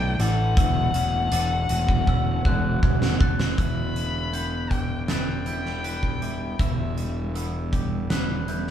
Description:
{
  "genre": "post-rock",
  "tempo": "80 BPM",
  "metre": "4/4",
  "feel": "straight",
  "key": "E dorian",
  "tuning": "A4 = 440 Hz",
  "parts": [
    { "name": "muted violin", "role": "melody", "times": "0.0-7.4 s", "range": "E5 to B5", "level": "-30 LUFS", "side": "left 5 dB", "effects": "none" },
    { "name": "shimmering ambient pad", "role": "sustained chords", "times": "0.0-8.7 s", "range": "D3 to A4", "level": "-35 LUFS", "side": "right 1 dB", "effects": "chorus, built-in reverb" },
    { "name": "glockenspiel with hard plastic mallets", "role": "arpeggios", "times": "0.0-8.7 s", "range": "D6 to A6", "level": "-36 LUFS", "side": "right 2 dB", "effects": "none" },
    { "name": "twangy electric guitar", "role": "arpeggios", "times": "0.0-8.7 s", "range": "D3 to B4", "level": "-36 LUFS", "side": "left 3 dB", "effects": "analog delay" },
    { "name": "fuzz fingered electric bass", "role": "bass", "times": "0.0-8.7 s", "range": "E1 to B1", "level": "-26 LUFS", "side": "equal", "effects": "overdrive" },
    { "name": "huge arena drum kit", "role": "drums", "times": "0.2-8.7 s", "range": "hi-hat, kick drum, snare drum", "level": "-25 LUFS", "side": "right 1 dB", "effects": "none" }
  ],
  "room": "moderate studio reverb, RT60 0.7 s",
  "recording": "band playing live in one room, cassette tape",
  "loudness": "-22 LUFS",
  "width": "side -10 dB against mid",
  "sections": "0.0-3.6 A section; 3.6-8.7 B section",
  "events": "drum fill 2.1-3.6",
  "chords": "0.0 Asus4; 0.6 Dmaj7/E; 3.6 Em"
}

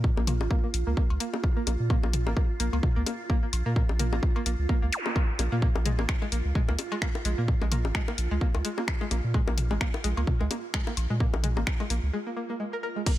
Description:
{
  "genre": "minimal techno",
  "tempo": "129 BPM",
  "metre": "4/4",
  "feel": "swing 56% on 16ths",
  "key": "Bb minor",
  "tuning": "A4 = 441 Hz",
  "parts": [
    { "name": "saturated sub bass", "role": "bass", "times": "0.0-12.1 s", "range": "Ab1 to Bb2", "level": "-27 LUFS", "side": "equal", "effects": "sidechain pumping" },
    { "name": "electronic kick drum", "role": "drums", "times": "0.0-13.2 s", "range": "none", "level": "-26 LUFS", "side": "equal", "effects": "none" },
    { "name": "swarming drone", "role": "texture", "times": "0.0-12.1 s", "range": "F4", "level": "-39 LUFS", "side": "right 5 dB", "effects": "built-in reverb, sidechain pumping" },
    { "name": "string-like resonator pluck", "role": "riff", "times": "0.2-13.1 s", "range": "Ab3 to Bb4", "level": "-34 LUFS", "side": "equal", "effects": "chorus, sidechain pumping, ping-pong delay" },
    { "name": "electronic bongos, toms and cowbell", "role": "percussion", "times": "0.2-11.9 s", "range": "none", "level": "-35 LUFS", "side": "left 3 dB", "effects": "overdrive" },
    { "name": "house drum kit", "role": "drums", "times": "0.3-13.2 s", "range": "crash cymbal, finger snaps, hi-hat", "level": "-33 LUFS", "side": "left 2 dB", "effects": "none" },
    { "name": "zap", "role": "sound effects", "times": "4.9-5.1 s", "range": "none", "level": "-33 LUFS", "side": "equal", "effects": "none" }
  ],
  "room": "digital ambience",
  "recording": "none",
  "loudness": "-25 LUFS",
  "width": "side -14 dB against mid",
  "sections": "0.0-13.1 A section",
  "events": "break 12.1-13.1",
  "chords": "0.0 Bb5"
}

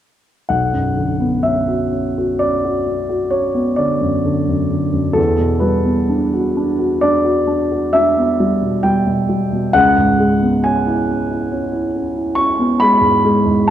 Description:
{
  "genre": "classical, impressionist solo piano",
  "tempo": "62-72 BPM",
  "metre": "5/4",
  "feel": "rubato",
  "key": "B minor",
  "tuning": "A4 = 440 Hz",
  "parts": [
    { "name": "warm grand piano", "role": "solo", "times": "0.5-13.7 s", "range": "B1 to C#6", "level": "-14 LUFS", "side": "equal", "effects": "none" }
  ],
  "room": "moderate scoring stage reverb, RT60 1.9 s",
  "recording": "none",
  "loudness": "-14 LUFS",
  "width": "side -11 dB against mid",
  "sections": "0.5-13.7 A section",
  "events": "none",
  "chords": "0.5 Bmadd9; 5.2 Em9; 9.7 C#m7"
}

